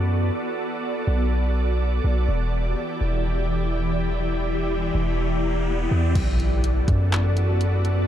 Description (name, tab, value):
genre	hip hop, atmospheric cloud-rap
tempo	124 BPM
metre	4/4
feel	half-time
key	E minor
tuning	A4 = 440 Hz
part	ethereal airy pad	sustained chords	0.0-8.1 s	E3 to D5	-26 LUFS	equal	ensemble chorus, built-in reverb, sidechain pumping, low-pass filter
part	long sustained 808-style bass	bass	0.0-8.1 s	E1 to F#2	-22 LUFS	equal	none
part	riser and impact	sound effects	4.1-8.1 s	none	-33 LUFS	equal	none
part	smooth R&B drum kit	drums	6.2-8.0 s	crash cymbal, handclaps, hi-hat, kick drum	-26 LUFS	equal	none
room	little or no reverb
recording	dark, warm production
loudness	-20 LUFS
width	side -10 dB against mid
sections	0.0-6.2 A section; 6.2-8.1 B section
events	riser 4.1-6.2; impact 6.2-8.1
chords	0.0 Bm7; 2.3 Em7; 6.2 Bm7